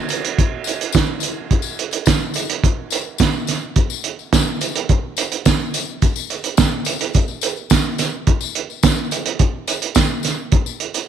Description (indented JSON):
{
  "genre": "rock",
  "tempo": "106 BPM",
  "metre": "4/4",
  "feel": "straight",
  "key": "none",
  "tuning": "none",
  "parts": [
    { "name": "cloth-damped thuddy drum kit", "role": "drums", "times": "0.1-11.1 s", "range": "hi-hat, kick drum, snare drum", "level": "-17 LUFS", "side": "right 2 dB", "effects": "none" },
    { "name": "tambourine", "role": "percussion", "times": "0.1-11.0 s", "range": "none", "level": "-27 LUFS", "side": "left 18 dB", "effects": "none" }
  ],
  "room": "light reverb, small room ambience",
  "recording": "1960s-style stereo",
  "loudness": "-16 LUFS",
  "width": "side -9 dB against mid",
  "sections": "0.0-11.1 A section",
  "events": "none",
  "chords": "none",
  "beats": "0.38 0.95 | 1.51 2.07 2.63 3.20 | 3.76 4.32 4.89 5.45 | 6.01 6.58 7.14 7.70 | 8.27 8.83 9.39 9.96 | 10.52"
}